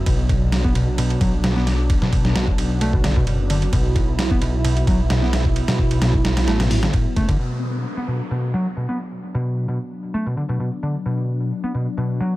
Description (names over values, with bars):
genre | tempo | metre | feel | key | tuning
breakbeat, breaks | 131 BPM | 4/4 | swing 53% on 16ths | B minor pentatonic | A4 = 439 Hz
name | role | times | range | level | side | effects
phased analog pad | sustained chords | 0.0-12.4 s | F#3 to E4 | -28 LUFS | right 1 dB | phaser, chorus, sidechain pumping
overdriven picked electric bass | riff | 0.1-12.3 s | A2 to B3 | -23 LUFS | equal | low-pass filter, tape echo
detuned saw bass | bass | 0.1-7.3 s | F#1 to B1 | -21 LUFS | equal | tube saturation
dusty soul sampler-style drum kit | drums | 0.1-7.4 s | hi-hat, kick drum, ride cymbal, snare drum | -21 LUFS | equal | overdrive
downlifter | sound effects | 7.4-11.1 s | none | -34 LUFS | left 2 dB | none
room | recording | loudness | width
light reverb | none | -18 LUFS | side -17 dB against mid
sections
0.0-7.4 A section; 7.4-12.4 B section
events
filter sweep on analog synth pad 7.4-12.4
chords
0.0 Bm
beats
| 0.07 0.52 0.98 1.44 | 1.90 2.35 2.81 3.27 | 3.73 4.19 4.64 5.10 | 5.56 6.02 6.48 6.93 | 7.39 7.85 8.31 8.77 | 9.22 9.68 10.14 10.60 | 11.06 11.52 11.97